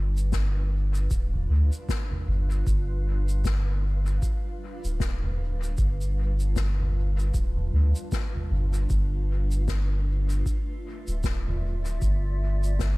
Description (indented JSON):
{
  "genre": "ambient dub",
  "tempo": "77 BPM",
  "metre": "4/4",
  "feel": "swing 59% on 16ths",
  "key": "G mixolydian",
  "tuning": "A4 = 440 Hz",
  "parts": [
    { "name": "granular cloud pad", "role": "sustained chords", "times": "0.0-13.0 s", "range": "G3 to F5", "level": "-40 LUFS", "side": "right 1 dB", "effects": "built-in reverb" },
    { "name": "soft dub sub bass", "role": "bass", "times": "0.0-13.0 s", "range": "D1 to D2", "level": "-24 LUFS", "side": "equal", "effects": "none" },
    { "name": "soft-mallet drum kit", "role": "drums", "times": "0.2-13.0 s", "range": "shaker, snare drum, toms", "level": "-36 LUFS", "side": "left 1 dB", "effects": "dub echo" },
    { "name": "electronic kick drum", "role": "drums", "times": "0.3-13.0 s", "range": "none", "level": "-29 LUFS", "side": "equal", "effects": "overdrive" }
  ],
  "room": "little or no reverb",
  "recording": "none",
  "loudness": "-24 LUFS",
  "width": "side -22 dB against mid",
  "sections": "0.0-13.0 A section",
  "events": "none",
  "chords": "0.0 G7; 8.9 Dmadd9"
}